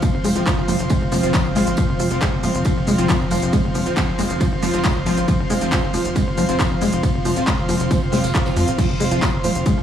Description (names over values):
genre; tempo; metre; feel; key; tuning
driving peak-time techno; 137 BPM; 4/4; straight; unclear; A4 = 440 Hz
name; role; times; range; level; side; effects
tight sequenced synth; riff; 0.0-9.8 s; F3 to Ab3; -25 LUFS; equal; chorus, sidechain pumping, tape echo
swarming drone; drone; 0.0-9.8 s; F3 to C4; -27 LUFS; left 2 dB; built-in reverb, sidechain pumping
big rock drum kit; drums; 0.0-9.8 s; hi-hat, snare drum, tambourine; -38 LUFS; right 2 dB; none
electronic kick drum; drums; 0.0-9.8 s; none; -21 LUFS; equal; none
techno drum kit; drums; 0.0-9.7 s; crash cymbal, handclaps, hi-hat, ride cymbal, shaker, toms; -24 LUFS; right 1 dB; none
airy breathy pad; texture; 0.0-9.8 s; F4 to C6; -26 LUFS; equal; chorus, sidechain pumping
tight sequencer bass; bass; 0.1-9.8 s; Eb1 to F2; -26 LUFS; equal; sidechain pumping
rave stab; stabs; 0.4-9.3 s; F3 to F4; -26 LUFS; right 1 dB; chorus, built-in reverb, vintage 12-bit sampler grit, sidechain pumping, digital delay
room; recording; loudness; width
light reverb; studio ambience; -16 LUFS; side -9 dB against mid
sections
0.0-9.8 A section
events
none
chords
0.0 F5